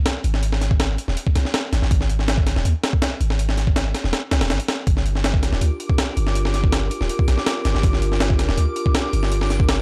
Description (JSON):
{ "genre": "drum and bass, jungle", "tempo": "162 BPM", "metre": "4/4", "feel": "straight", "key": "G phrygian", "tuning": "A4 = 440 Hz", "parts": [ { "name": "breakbeat sampler-style drum kit", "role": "drums", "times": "0.1-9.8 s", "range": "hi-hat, kick drum, snare drum", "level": "-23 LUFS", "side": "equal", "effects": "studio reverb" }, { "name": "long sustained 808-style bass", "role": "bass", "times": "0.2-9.8 s", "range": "D1 to Eb2", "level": "-23 LUFS", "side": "equal", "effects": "none" }, { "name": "warbly tape-like pad", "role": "sustained chords", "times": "5.4-9.8 s", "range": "D4 to Bb4", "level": "-31 LUFS", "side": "equal", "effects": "chorus, built-in reverb" }, { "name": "twinkling granular texture", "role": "texture", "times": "5.3-9.8 s", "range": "D6", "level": "-35 LUFS", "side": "equal", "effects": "built-in reverb" } ], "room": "digital ambience", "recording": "dry, gritty hardware recording, transformer saturation, cassette tape", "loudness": "-20 LUFS", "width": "mono", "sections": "0.0-9.8 A section", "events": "kick drops out 4.1-4.9", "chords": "0.0 N.C.; 4.9 Gm7", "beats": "0.06 | 0.43 0.80 1.17 1.54 | 1.91 2.28 2.65 3.02 | 3.39 3.76 4.13 4.50 | 4.87 5.24 5.61 5.98 | 6.35 6.72 7.09 7.46 | 7.83 8.21 8.58 8.95 | 9.32 9.69" }